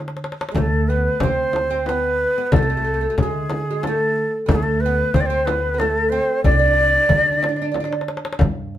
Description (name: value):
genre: Arabic maqam ensemble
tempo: 92 BPM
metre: 3/4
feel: straight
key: unclear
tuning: A4 = 442 Hz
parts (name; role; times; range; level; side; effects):
- upright bass; bass; 0.0-8.8 s; C2 to D3; -23 LUFS; equal; none
- darbuka; percussion; 0.0-8.8 s; none; -25 LUFS; left 2 dB; none
- oud; second line; 0.5-7.9 s; G#3 to D4; -25 LUFS; right 3 dB; none
- breathy bright ney; melody; 0.6-8.0 s; G#4 to D5; -20 LUFS; equal; none
- frame drum; percussion; 0.6-8.6 s; none; -23 LUFS; left 1 dB; none
room: moderate studio reverb, RT60 0.6 s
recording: minimal, uncompressed stereo recording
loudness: -17 LUFS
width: side -12 dB against mid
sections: 0.0-8.4 A section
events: drum fill 0.0-0.6, 7.8-8.4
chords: none